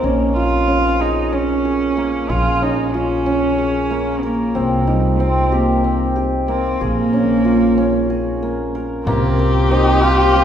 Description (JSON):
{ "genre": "contemporary instrumental, chamber music in an uneven meter", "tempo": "186 BPM (eighths)", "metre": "7/8", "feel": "straight", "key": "Bb dorian", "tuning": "A4 = 439 Hz", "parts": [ { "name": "warm cello", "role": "melody", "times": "0.0-10.4 s", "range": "G3 to F4", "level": "-19 LUFS", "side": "right 1 dB", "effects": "none" }, { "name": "hammered dulcimer", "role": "arpeggios", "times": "0.0-10.4 s", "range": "Bb3 to Bb4", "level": "-19 LUFS", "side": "equal", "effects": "none" }, { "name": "upright bass", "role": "bass", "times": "0.0-10.4 s", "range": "Bb1 to C2", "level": "-21 LUFS", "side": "equal", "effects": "none" }, { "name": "clear erhu", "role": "second line", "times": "9.1-10.4 s", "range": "G4", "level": "-18 LUFS", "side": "left 5 dB", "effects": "none" }, { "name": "frame drum", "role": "percussion", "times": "9.1-10.3 s", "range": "none", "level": "-26 LUFS", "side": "left 1 dB", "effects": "none" } ], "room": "wet recital hall reverb, RT60 1.7 s", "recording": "heard from further back in the room", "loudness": "-15 LUFS", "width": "side -9 dB against mid", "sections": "0.0-9.1 A section; 9.1-10.4 B section", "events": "none", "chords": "0.0 Bbm7; 4.6 Cm7; 6.8 Bbm7; 9.1 C5" }